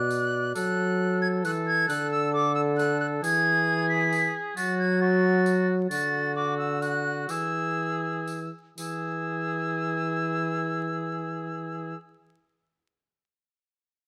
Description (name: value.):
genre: classical, renaissance-style consort dance.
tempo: 117-135 BPM.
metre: 3/4.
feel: straight.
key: E mixolydian.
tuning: A4 = 438 Hz.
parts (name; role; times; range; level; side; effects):
silver concert flute; melody; 0.0-12.0 s; D6 to B6; -31 LUFS; equal; none.
mellow cor anglais; second line; 0.0-12.0 s; F#4 to D5; -34 LUFS; equal; none.
dark trombone; bass; 0.0-11.9 s; B2 to F#3; -30 LUFS; equal; none.
tambourine; percussion; 0.1-9.0 s; none; -46 LUFS; equal; none.
room: moderate stone room reverb, RT60 1.3 s.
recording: vinyl crackle.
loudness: -26 LUFS.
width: mono.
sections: 0.0-8.8 A section; 8.8-11.9 B section.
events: slowing down 5.2-8.8.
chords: 0.0 Bm; 0.6 F#m; 1.9 D5; 3.2 E; 4.6 F#m; 5.9 D; 7.3 E.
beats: 0.10 | 0.55 1.00 1.45 | 1.90 2.34 2.79 | 3.23 3.68 4.12 | 4.57 5.01 5.46 | 5.90 6.36 6.82 | 7.29 7.77 8.27 | 8.78 9.29 9.80 | 10.32 10.83 11.35.